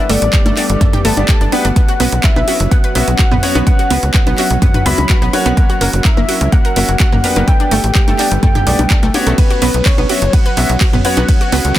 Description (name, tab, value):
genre	progressive house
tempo	126 BPM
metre	4/4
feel	straight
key	B minor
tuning	A4 = 441 Hz
part	soft octave-layered synth lead	melody	0.0-11.8 s	B4 to B5	-20 LUFS	left 2 dB	chorus, dub echo
part	soft round pluck	second line	0.0-11.8 s	B4 to B5	-29 LUFS	left 1 dB	none
part	lush unison pad	sustained chords	0.0-11.8 s	F#3 to C#4	-24 LUFS	right 1 dB	chorus, sidechain pumping
part	analog pluck	arpeggios	0.0-11.8 s	A3 to B5	-21 LUFS	right 2 dB	chorus, sidechain pumping, dub echo
part	bright baby grand piano	stabs	0.0-11.6 s	A#3 to E5	-21 LUFS	left 2 dB	sidechain pumping, dub echo
part	tight sequencer bass	bass	0.1-11.7 s	F#1 to C#2	-16 LUFS	equal	sidechain pumping
part	house drum kit	drums	0.1-11.8 s	handclaps, hi-hat, ride cymbal	-20 LUFS	right 2 dB	sidechain pumping on hats, sidechain pumping on cymbals
part	electronic kick drum	drums	0.3-11.8 s	none	-12 LUFS	equal	none
part	electronic congas and toms	percussion	0.5-11.3 s	none	-20 LUFS	left 2 dB	sidechain pumping on perc, sidechain pumping on toms
room	little or no reverb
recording	dense, heavily limited modern master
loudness	-10 LUFS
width	side -13 dB against mid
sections	0.0-11.8 A section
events	none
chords	0.0 Gadd9; 1.8 Bsus2; 5.6 F#; 7.5 Gadd9; 9.4 Bsus2